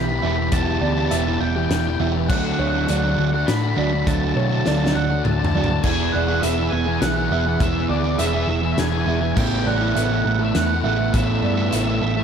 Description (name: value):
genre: post-rock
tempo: 102 BPM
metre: 3/4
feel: straight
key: unclear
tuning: A4 = 440 Hz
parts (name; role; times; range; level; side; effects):
- octave-fuzz lead guitar; melody; 0.0-12.2 s; D5 to B5; -26 LUFS; right 1 dB; distortion, slapback echo
- sweeping resonant pad; sustained chords; 0.0-12.2 s; F#4 to C#6; -36 LUFS; equal; none
- crunchy overdriven guitar; riff; 0.0-12.2 s; D3 to A4; -24 LUFS; right 10 dB; none
- sludgy distorted guitar; riff; 0.0-12.2 s; D3 to A4; -26 LUFS; left 13 dB; overdrive
- hollow-body short-scale picked electric bass; bass; 0.0-12.2 s; E1 to B2; -23 LUFS; equal; none
- felt-muted upright piano; arpeggios; 0.2-12.2 s; C#5 to E5; -30 LUFS; right 7 dB; slapback echo
- loose indie drum kit; drums; 0.5-11.9 s; crash cymbal, hi-hat, kick drum, snare drum, toms; -26 LUFS; left 1 dB; none
room: light reverb, small room ambience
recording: none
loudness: -18 LUFS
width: side -7 dB against mid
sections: 0.0-12.2 A section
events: drum fill 4.7-5.8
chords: 0.0 Em; 2.3 D; 5.8 E; 9.4 Asus2